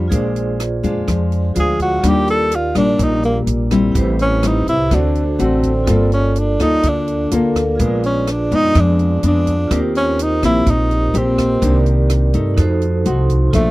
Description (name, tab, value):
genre	bossa nova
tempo	125 BPM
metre	4/4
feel	straight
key	Bb major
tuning	A4 = 442 Hz
part	breathy tenor saxophone	melody	0.0-13.7 s	A3 to A4	-18 LUFS	equal	none
part	nylon-string guitar	accompaniment	0.0-13.7 s	A2 to A4	-19 LUFS	left 3 dB	none
part	vibraphone with medium hard mallets	accompaniment	0.0-13.7 s	Eb4 to C6	-24 LUFS	right 5 dB	none
part	upright bass	bass	0.0-13.7 s	G1 to G2	-18 LUFS	equal	none
part	compact cocktail drum kit	drums	0.1-13.6 s	hi-hat, kick drum, rim click	-22 LUFS	equal	none
room	little or no reverb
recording	dry, close 1970s-style studio recording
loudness	-13 LUFS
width	side -18 dB against mid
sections	0.0-13.5 A section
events	tenor saxophone solo 0.0-13.5; vibraphone fill 12.8-13.5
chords	0.1 Bb7; 2.0 Ebmaj7; 4.0 Am7; 4.9 D7; 5.9 Gm9; 7.8 Bb7b9; 9.7 Eb6; 11.6 Cm9; 12.6 F7b9